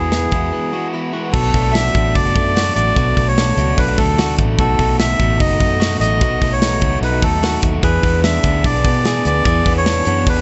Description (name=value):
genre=jangly indie pop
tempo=148 BPM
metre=4/4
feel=straight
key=unclear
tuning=A4 = 440 Hz
part: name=melodica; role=melody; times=0.0-10.4 s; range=G#4 to E5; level=-22 LUFS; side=equal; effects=none
part: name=crunchy overdriven guitar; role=accompaniment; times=0.0-10.4 s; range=B2 to G#4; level=-26 LUFS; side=equal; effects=none
part: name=direct-recorded clean electric guitar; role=arpeggios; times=0.0-10.4 s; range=B2 to G#4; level=-25 LUFS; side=equal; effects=none
part: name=vintage muted fingered electric bass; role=bass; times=0.0-10.4 s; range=F#1 to B2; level=-22 LUFS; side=equal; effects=none
part: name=modern studio drum kit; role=drums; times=0.1-10.4 s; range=crash cymbal, hi-hat, kick drum, snare drum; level=-21 LUFS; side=equal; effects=none
room=light reverb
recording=nothing above 8.0 kHz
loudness=-16 LUFS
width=mono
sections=0.0-1.3 A section; 1.3-10.4 B section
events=break 0.5-1.3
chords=0.0 Eadd9; 1.3 Bm7; 4.6 B7; 7.8 E7